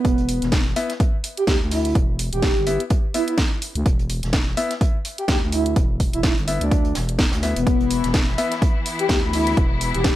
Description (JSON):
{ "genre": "bass house", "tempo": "126 BPM", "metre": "4/4", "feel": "swing 57% on 16ths", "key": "E minor", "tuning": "A4 = 440 Hz", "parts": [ { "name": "breathy flute-like synth lead", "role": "melody", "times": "0.0-10.2 s", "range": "B3 to G4", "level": "-24 LUFS", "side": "equal", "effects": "tremolo, wide subtle chorus, dub echo" }, { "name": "growling FM bass", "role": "bass", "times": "0.0-10.2 s", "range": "E1 to D2", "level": "-25 LUFS", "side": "equal", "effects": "tube saturation, sidechain pumping" }, { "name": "electronic kick drum", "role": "drums", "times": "0.0-10.2 s", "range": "none", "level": "-20 LUFS", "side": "equal", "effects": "overdrive, small room ambience" }, { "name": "garage drum kit", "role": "drums", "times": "0.0-10.2 s", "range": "hi-hat, snare drum", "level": "-26 LUFS", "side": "equal", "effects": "small room ambience" }, { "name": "vintage drum kit", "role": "drums", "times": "0.0-10.2 s", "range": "hi-hat, snare drum", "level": "-36 LUFS", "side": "right 2 dB", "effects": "high-pass filter on hats, small room ambience, high-pass filter on snare, high-pass filter on room" }, { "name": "clear concert grand piano", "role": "stabs", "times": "0.8-8.5 s", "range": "B3 to E5", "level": "-27 LUFS", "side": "left 3 dB", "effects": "sidechain pumping, dub echo" }, { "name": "rich studio string section", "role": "sustained chords", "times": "7.7-10.2 s", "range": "E3 to E4", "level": "-27 LUFS", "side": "left 4 dB", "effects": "sidechain pumping" } ], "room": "studio reverb", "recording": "none", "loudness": "-18 LUFS", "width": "side -14 dB against mid", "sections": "0.0-10.2 A section", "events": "none", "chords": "0.0 E5" }